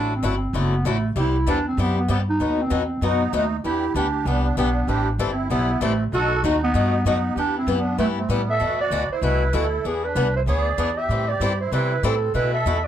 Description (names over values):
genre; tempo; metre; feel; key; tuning
acoustic string swing (jazz manouche); 193 BPM; 4/4; swing 59% on 8ths; E minor; A4 = 437 Hz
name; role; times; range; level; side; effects
growling clarinet; melody; 0.0-12.9 s; G3 to E5; -24 LUFS; right 2 dB; none
picked swing-style acoustic guitar; accompaniment; 0.0-12.8 s; B2 to A4; -26 LUFS; left 6 dB; none
upright bass; bass; 0.0-12.9 s; F#1 to C3; -24 LUFS; equal; none
musette accordion; second line; 3.0-12.9 s; B3 to A4; -30 LUFS; right 7 dB; none
room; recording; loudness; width
moderate club ambience, RT60 0.5 s; none; -19 LUFS; side -10 dB against mid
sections
0.0-8.6 A section; 8.6-12.9 B section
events
none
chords
0.0 Dadd9; 1.2 Cmaj7; 2.4 B; 3.6 Em7; 4.9 Am7; 6.1 B7; 7.4 Em; 8.6 B7sus4; 9.8 E7; 11.1 Am7; 12.3 B7sus4